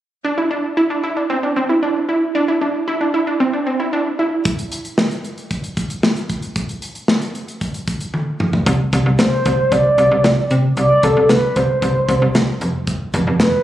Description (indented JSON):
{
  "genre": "synth-pop",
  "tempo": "114 BPM",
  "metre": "4/4",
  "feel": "straight",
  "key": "C major",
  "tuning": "A4 = 440 Hz",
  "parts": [
    { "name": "wide unison pluck", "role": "arpeggios", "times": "0.2-4.4 s", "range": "C4 to E4", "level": "-16 LUFS", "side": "right 1 dB", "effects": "tape echo" },
    { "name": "modern studio drum kit", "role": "drums", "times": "4.5-13.5 s", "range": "hi-hat, kick drum, snare drum, toms", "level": "-20 LUFS", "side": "equal", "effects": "none" },
    { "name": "slap-like FM bass", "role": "bass", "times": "8.7-13.5 s", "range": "F1 to C3", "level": "-17 LUFS", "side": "equal", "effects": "none" },
    { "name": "mellow horn-like synth lead", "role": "melody", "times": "9.2-13.6 s", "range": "A4 to D5", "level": "-16 LUFS", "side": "equal", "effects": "chorus, tape echo" }
  ],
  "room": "moderate lush hall reverb, RT60 2.0 s",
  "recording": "recorded on a phone in the room, club reverb",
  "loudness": "-15 LUFS",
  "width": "side -12 dB against mid",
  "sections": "0.2-8.7 A section; 8.7-13.6 B section",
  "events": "drum fill 8.1-8.7",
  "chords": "0.2 Cadd9 (rootless); 4.2 N.C.; 8.7 Csus2; 12.6 F5",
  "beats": "| 0.24 0.77 1.30 1.82 | 2.35 2.88 3.40 3.93 | 4.45 4.98 5.51 6.03 | 6.56 7.08 7.61 8.14 | 8.66 9.19 9.72 10.24 | 10.77 11.30 11.82 12.35 | 12.88 13.40"
}